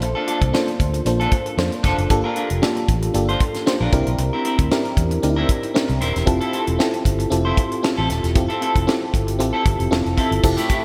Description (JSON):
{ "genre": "polished 1980s jazz-funk pop", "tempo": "115 BPM", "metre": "4/4", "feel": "swing 54% on 16ths", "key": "unclear", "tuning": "A4 = 440 Hz", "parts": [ { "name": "FM electric piano", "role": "accompaniment", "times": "0.0-10.8 s", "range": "Bb3 to C5", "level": "-24 LUFS", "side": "equal", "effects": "subtle chorus" }, { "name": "clean electric guitar", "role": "riff", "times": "0.0-10.8 s", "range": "A3 to C5", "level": "-28 LUFS", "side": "equal", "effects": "lush chorus" }, { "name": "vintage muted fingered electric bass", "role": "bass", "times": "0.0-10.5 s", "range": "Eb1 to F2", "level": "-25 LUFS", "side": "equal", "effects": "none" }, { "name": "tight funk drum kit", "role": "drums", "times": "0.0-10.8 s", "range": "crash cymbal, hi-hat, kick drum, snare drum", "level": "-24 LUFS", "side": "equal", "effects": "none" }, { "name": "tube shaker", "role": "percussion", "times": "10.4-10.8 s", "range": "none", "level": "-38 LUFS", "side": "equal", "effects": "none" } ], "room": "moderate lush hall reverb, RT60 1.8 s, studio reverb", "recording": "bright 1980s-style digital production", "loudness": "-20 LUFS", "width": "mono", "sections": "0.0-10.4 A section", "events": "none", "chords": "0.0 Bbmaj7; 2.1 Gm7; 3.9 C7; 6.3 Fmaj9" }